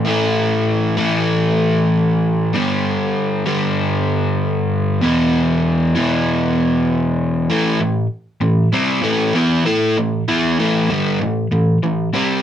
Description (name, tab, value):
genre	rock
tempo	97 BPM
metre	4/4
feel	straight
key	A minor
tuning	A4 = 441 Hz
part	overdriven semi-hollow guitar	solo	0.0-12.4 s	E2 to A4	-15 LUFS	equal	none
room	wet studio reverb, RT60 0.5 s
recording	band playing live in one room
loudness	-15 LUFS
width	side -10 dB against mid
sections	0.0-7.5 A section; 7.5-12.4 B section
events	none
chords	0.0 A5; 2.5 G5; 5.0 E5; 7.5 Am